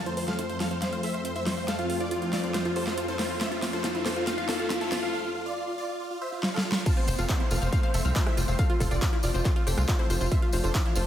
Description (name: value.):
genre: uplifting trance.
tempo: 139 BPM.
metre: 4/4.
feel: straight.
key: F major.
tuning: A4 = 440 Hz.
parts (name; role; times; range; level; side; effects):
big supersaw lead; melody; 0.0-11.0 s; F4 to A5; -34 LUFS; equal; sidechain pumping, diffuse ambient delay.
plucky unison lead; second line; 0.0-11.0 s; F4 to A5; -36 LUFS; equal; sidechain pumping, tape echo.
analog string pad; sustained chords; 0.0-11.1 s; F2 to D4; -35 LUFS; left 1 dB; ensemble chorus, sidechain pumping.
analog pluck; arpeggios; 0.0-11.0 s; E4 to F5; -35 LUFS; equal; chorus, sidechain pumping, tape echo.
riser and downlifter; sound effects; 0.0-10.3 s; none; -39 LUFS; left 1 dB; none.
big-room dance drum kit; drums; 0.1-11.1 s; crash cymbal, handclaps, hi-hat, rim click, snare drum; -32 LUFS; equal; none.
electronic kick drum; drums; 6.9-10.8 s; none; -25 LUFS; equal; none.
tambourine; percussion; 6.9-11.0 s; none; -39 LUFS; left 2 dB; none.
tight sequencer bass; bass; 7.1-11.0 s; F1 to C2; -27 LUFS; equal; sidechain pumping.
room: wet lush hall reverb, RT60 1.7 s.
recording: dreamy mix soaked in reverb.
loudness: -25 LUFS.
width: side -11 dB against mid.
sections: 0.0-6.9 A section; 6.9-11.1 B section.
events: build-up 0.0-6.9; drum fill 0.0-5.1, 6.4-6.9; filter sweep on synth pluck 0.0-6.9; break 5.1-6.9; drop 6.9-11.1.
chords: 0.0 F.